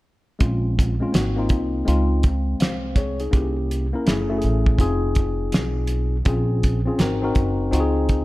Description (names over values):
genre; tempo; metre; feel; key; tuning
hip hop, jazz-hop; 82 BPM; 4/4; swing 66% on 16ths; Bb minor; A4 = 441 Hz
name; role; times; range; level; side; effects
mellow tine electric piano; accompaniment; 0.4-8.2 s; Ab3 to F5; -24 LUFS; left 2 dB; none
upright bass; bass; 0.4-8.2 s; F1 to Db2; -23 LUFS; equal; none
cloth-damped thuddy drum kit; drums; 0.4-8.2 s; hi-hat, kick drum, snare drum; -20 LUFS; equal; none
room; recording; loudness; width
light reverb, studio reverb; dark, warm production; -19 LUFS; side -18 dB against mid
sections
0.4-8.2 A section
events
none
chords
0.4 Bbm9; 1.1 Ab7; 1.9 Dbmaj9; 3.3 C7b9; 4.1 Gbm7; 4.8 Fm7; 6.3 Bbm9; 7.0 Ab7; 7.7 Dbmaj9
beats
| 0.41 1.14 1.87 2.60 | 3.33 4.07 4.80 5.53 | 6.26 6.99 7.72